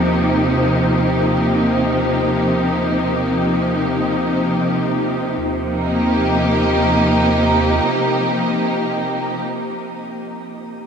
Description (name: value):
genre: ambient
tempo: free time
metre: none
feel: none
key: Eb major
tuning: A4 = 440 Hz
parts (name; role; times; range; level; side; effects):
- rich symphonic string section; sustained chords; 0.0-9.4 s; C3 to G4; -16 LUFS; equal; shimmer reverb
- warm sub bass; bass; 0.0-7.8 s; Eb2; -28 LUFS; equal; none
room: wet huge ambient reverb, RT60 7.7 s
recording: none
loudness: -15 LUFS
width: side -7 dB against mid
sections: 0.0-5.4 A section; 5.4-8.7 B section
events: none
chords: 0.0 Ebadd9